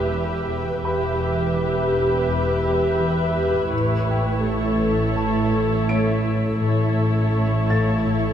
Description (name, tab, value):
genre	cinematic, suspense film score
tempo	83 BPM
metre	4/4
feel	straight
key	unclear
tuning	A4 = 440 Hz
part	muted symphonic violin section	melody	0.0-8.3 s	C#5 to E5	-32 LUFS	left 2 dB	none
part	muted symphonic violin section	second line	0.0-8.3 s	A4 to B4	-29 LUFS	left 2 dB	none
part	muted symphonic viola section	accompaniment	0.0-8.3 s	E4 to G4	-26 LUFS	right 1 dB	none
part	shimmering ambient pad	sustained chords	0.0-8.3 s	G4 to E5	-28 LUFS	equal	chorus, built-in reverb
part	muted symphonic cello section	bass	0.0-8.3 s	E2 to A2	-26 LUFS	right 2 dB	none
part	muted symphonic double bass section	bass	0.0-8.3 s	E1 to A1	-25 LUFS	right 2 dB	none
part	warm grand piano	texture	0.0-8.3 s	C#5 to D7	-35 LUFS	left 1 dB	none
part	buzzing marimba with soft mallets	riff	0.1-8.3 s	E2 to A3	-28 LUFS	left 6 dB	none
room	moderate recital hall reverb, RT60 1.6 s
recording	none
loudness	-19 LUFS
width	side -9 dB against mid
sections	0.0-8.3 A section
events	none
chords	0.0 Em; 3.7 A